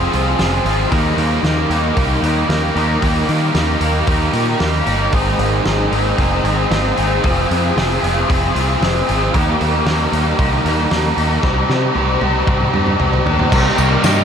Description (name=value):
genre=rock, shoegaze and dream pop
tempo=114 BPM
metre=4/4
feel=straight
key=unclear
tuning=A4 = 440 Hz
part: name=direct-recorded clean electric guitar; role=arpeggios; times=0.0-14.2 s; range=Eb3 to Eb4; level=-26 LUFS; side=right 9 dB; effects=wide subtle chorus, analog delay
part: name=biting overdriven guitar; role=riff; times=0.0-14.2 s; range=Ab2 to Ab4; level=-20 LUFS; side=right 10 dB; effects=reverse reverb
part: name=crunchy overdriven guitar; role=riff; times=0.0-14.2 s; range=Ab2 to Ab4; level=-19 LUFS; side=left 8 dB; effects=ensemble chorus
part: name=growling picked electric bass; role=bass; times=0.0-14.2 s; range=F1 to Eb3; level=-19 LUFS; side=equal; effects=overdrive
part: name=loose indie drum kit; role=drums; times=0.1-14.2 s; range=crash cymbal, hi-hat, kick drum, snare drum, toms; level=-22 LUFS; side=equal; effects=none
part: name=tambourine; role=percussion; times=13.5-14.2 s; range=none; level=-29 LUFS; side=left 16 dB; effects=none
room=moderate huge ambient reverb, RT60 7.5 s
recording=dreamy mix soaked in reverb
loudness=-14 LUFS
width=side -7 dB against mid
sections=0.0-13.5 A section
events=drum fill 11.4-13.5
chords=0.0 Fm; 0.9 Eb; 5.1 Abadd9; 7.2 Fm; 9.3 Eb; 11.4 Cmadd9; 13.5 Cm7